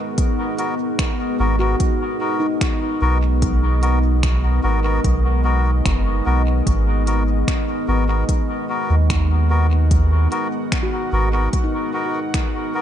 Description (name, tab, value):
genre	ambient dub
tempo	74 BPM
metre	4/4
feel	straight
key	G# minor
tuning	A4 = 442 Hz
part	deep dark ambient pad	sustained chords	0.0-12.8 s	G#3 to F#5	-24 LUFS	equal	chorus, built-in reverb
part	electronic kick drum	drums	0.2-12.5 s	none	-21 LUFS	equal	overdrive
part	organic electronic drum kit	drums	0.2-12.5 s	finger snaps, hi-hat	-29 LUFS	equal	dub echo
part	melodica	stabs	0.6-12.8 s	B3 to A#4	-25 LUFS	left 3 dB	dub echo
part	soft dub sub bass	bass	1.4-11.5 s	F#1 to D#2	-17 LUFS	equal	tube saturation
part	handpan	arpeggios	1.6-12.8 s	D#4 to A#4	-28 LUFS	left 2 dB	dub echo
room	light reverb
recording	nothing above 10.6 kHz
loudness	-16 LUFS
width	side -10 dB against mid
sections	0.0-12.8 A section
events	none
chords	0.0 G#m9